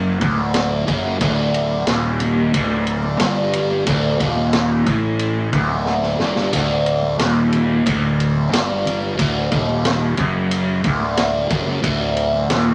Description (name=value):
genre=psychedelic rock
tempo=90 BPM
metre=4/4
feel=straight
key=unclear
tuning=A4 = 440 Hz
part: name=fuzz guitar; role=riff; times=0.0-12.7 s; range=D2 to A2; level=-21 LUFS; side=equal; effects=distortion, phaser
part: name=fuzz fingered electric bass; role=bass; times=0.0-12.7 s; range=D1 to A1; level=-25 LUFS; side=equal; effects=overdrive
part: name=vintage drum kit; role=drums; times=0.2-12.7 s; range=kick drum, ride cymbal, snare drum, splash cymbal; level=-25 LUFS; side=equal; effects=none
part: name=congas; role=percussion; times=0.4-12.5 s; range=none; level=-36 LUFS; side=equal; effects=none
room=moderate studio reverb, RT60 0.7 s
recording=none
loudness=-19 LUFS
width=mono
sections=0.0-12.7 A section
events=drum fill 5.9-6.5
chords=0.0 D